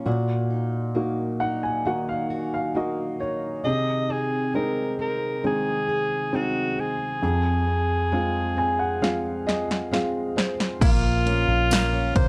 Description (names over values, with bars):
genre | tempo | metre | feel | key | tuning
pop ballad | 67 BPM | 4/4 | straight | unclear | A4 = 440 Hz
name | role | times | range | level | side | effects
warm concert grand piano | accompaniment | 0.0-12.3 s | F2 to Ab5 | -28 LUFS | equal | plate reverb
fingerpicked plugged-in steel-string acoustic guitar | arpeggios | 0.0-12.3 s | F2 to Ab4 | -33 LUFS | equal | none
clear alto saxophone | melody | 3.6-12.3 s | F4 to Eb5 | -29 LUFS | equal | plate reverb
punchy analog drum machine | drums | 9.0-12.3 s | crash cymbal, kick drum, ride cymbal, snare drum | -25 LUFS | equal | none
vintage muted fingered electric bass | bass | 10.8-12.3 s | Bb1 to Db2 | -27 LUFS | equal | none
tambourine | percussion | 11.7-11.9 s | none | -39 LUFS | equal | none
room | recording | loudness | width
moderate studio reverb, RT60 0.6 s | none | -25 LUFS | mono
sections
0.0-10.8 A section; 10.8-12.3 B section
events
grand piano fill 1.0-3.6, 8.1-10.8; drum fill 9.0-10.8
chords
0.1 Ebm/Bb; 3.6 Ab/C; 7.2 Fm; 10.8 Bbm